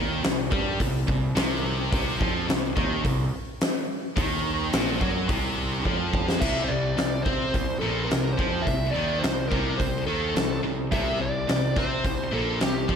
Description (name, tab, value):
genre	hard rock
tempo	107 BPM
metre	4/4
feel	straight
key	unclear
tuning	A4 = 440 Hz
part	high-gain distorted guitar	riff	0.0-13.0 s	Bb2 to C4	-30 LUFS	left 8 dB	distortion, slapback echo
part	scooped high-gain guitar	riff	0.0-13.0 s	Bb2 to C4	-31 LUFS	right 9 dB	distortion, slapback echo
part	fuzz picked electric bass	bass	0.0-13.0 s	Bb1 to C3	-30 LUFS	equal	overdrive
part	huge arena drum kit	drums	0.2-13.0 s	crash cymbal, hi-hat, kick drum, snare drum	-27 LUFS	equal	none
part	bluesy overdriven lead guitar	melody	6.4-13.0 s	G4 to E5	-29 LUFS	equal	distortion, slapback echo
room	light reverb, small room ambience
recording	none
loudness	-23 LUFS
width	side -7 dB against mid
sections	0.0-6.4 A section; 6.4-13.0 B section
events	drum fill 5.9-6.4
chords	0.0 C5; 6.4 N.C.